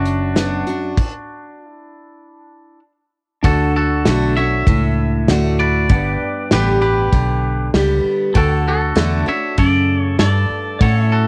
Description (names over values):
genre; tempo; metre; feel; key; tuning
honky-tonk and classic country; 98 BPM; 4/4; straight; D major; A4 = 441 Hz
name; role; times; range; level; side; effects
twangy electric guitar; melody; 0.0-11.3 s; D4 to E5; -24 LUFS; equal; cassette tape
bright concert grand piano; accompaniment; 0.0-11.3 s; A3 to F#5; -32 LUFS; equal; cassette tape
picked steel-string acoustic guitar; accompaniment; 0.0-11.3 s; F#2 to G4; -22 LUFS; equal; cassette tape
pedal steel guitar; sustained chords; 0.0-11.3 s; D4 to G5; -31 LUFS; equal; lush chorus, cassette tape
vintage muted fingered electric bass; bass; 0.0-11.3 s; F#1 to A2; -21 LUFS; equal; none
natural country drum kit; drums; 0.1-11.0 s; crash cymbal, hi-hat, kick drum, snare drum; -18 LUFS; equal; cassette tape
room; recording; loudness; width
small room ambience; home recording on cassette; -17 LUFS; mono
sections
0.0-3.4 A section; 3.4-11.3 B section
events
stop 1.0-3.4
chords
0.0 Bm; 3.4 D; 5.9 G; 8.4 D